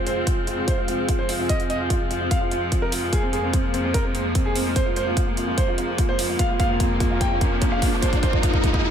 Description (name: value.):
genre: heavy wobble dubstep.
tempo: 147 BPM.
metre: 4/4.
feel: half-time.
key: F minor.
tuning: A4 = 440 Hz.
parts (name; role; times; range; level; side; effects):
warm concert grand piano; melody; 0.0-8.8 s; C4 to G5; -26 LUFS; right 2 dB; digital delay.
bright chamber string section; sustained chords; 0.0-8.9 s; F2 to C4; -27 LUFS; left 2 dB; stereo widening, sidechain pumping, low-pass filter.
granular cloud pad; texture; 0.0-8.8 s; C4 to F5; -30 LUFS; right 1 dB; built-in reverb, sidechain pumping.
electronic hi-hat; drums; 0.1-8.7 s; none; -31 LUFS; right 2 dB; overdrive, high-pass filter on hats, small room reverb, high-pass filter on snare.
electronic kick drum; drums; 0.3-8.8 s; none; -22 LUFS; equal; overdrive, small room reverb.
riser and reverse cymbal; sound effects; 4.9-8.9 s; none; -30 LUFS; right 1 dB; none.
room: light reverb, digital ambience.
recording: none.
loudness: -20 LUFS.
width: side -8 dB against mid.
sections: 0.0-8.9 A section.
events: build-up 0.0-8.9; drum fill 3.1-8.8; riser 4.9-8.9.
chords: 0.0 Fm.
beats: 0.27 0.68 1.09 | 1.50 1.90 2.31 2.72 | 3.13 3.54 3.94 4.35 | 4.76 5.17 5.58 5.98 | 6.39 6.80 7.21 7.62 | 8.03 8.43 8.84.